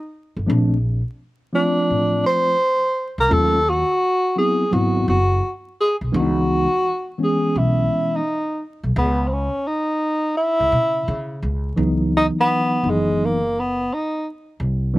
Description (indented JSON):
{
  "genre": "hip hop",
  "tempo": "85 BPM",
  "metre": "4/4",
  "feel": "swing 64% on 16ths",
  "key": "C# minor, C# dorian from 11.8 s",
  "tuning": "A4 = 438 Hz",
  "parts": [
    { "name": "breathy tenor saxophone", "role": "melody", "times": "0.0-14.3 s", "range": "G#3 to B#4", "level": "-19 LUFS", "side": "equal", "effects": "none" },
    { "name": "upright bass", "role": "bass", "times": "0.4-15.0 s", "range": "F#1 to C#3", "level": "-22 LUFS", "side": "equal", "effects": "none" },
    { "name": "mellow tine electric piano", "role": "accompaniment", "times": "0.5-15.0 s", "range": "D#3 to E#4", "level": "-21 LUFS", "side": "equal", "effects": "medium stereo tremolo, slapback echo" }
  ],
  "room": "little or no reverb",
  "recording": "recorded outdoors, with no room sound, vinyl crackle",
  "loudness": "-18 LUFS",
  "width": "side -18 dB against mid",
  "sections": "0.0-11.8 A section; 11.8-15.0 B section",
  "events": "tenor saxophone solo 11.8-15.0",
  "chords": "0.5 A#maj9; 3.3 D#m7b5; 4.7 G#7alt; 6.1 C#m9; 11.8 C#m11"
}